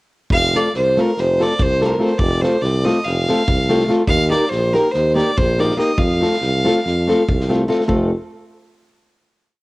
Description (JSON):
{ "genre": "balkan folk, Balkan wedding band", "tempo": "284 BPM (eighths)", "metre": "9/8", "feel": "straight", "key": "F mixolydian", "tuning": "A4 = 440 Hz", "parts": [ { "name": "bright fiddle", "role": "melody", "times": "0.3-7.5 s", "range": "Bb4 to F5", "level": "-20 LUFS", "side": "equal", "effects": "cassette tape" }, { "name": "mellow tuba", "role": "bass", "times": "0.3-8.1 s", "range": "F1 to F2", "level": "-20 LUFS", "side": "equal", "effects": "none" }, { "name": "loose indie drum kit", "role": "percussion", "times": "0.3-8.1 s", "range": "kick drum, snare drum", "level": "-23 LUFS", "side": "equal", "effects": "cassette tape" }, { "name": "nylon-string guitar", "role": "accompaniment", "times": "0.5-8.1 s", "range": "A3 to Bb4", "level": "-19 LUFS", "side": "left 1 dB", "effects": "cassette tape" } ], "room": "moderate spring reverb, RT60 1.6 s, studio ambience", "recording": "home recording on cassette", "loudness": "-14 LUFS", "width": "side -21 dB against mid", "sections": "0.3-7.9 A section; 7.9-9.6 final chord", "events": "none", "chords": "0.3 F; 4.1 Eb; 6.0 F" }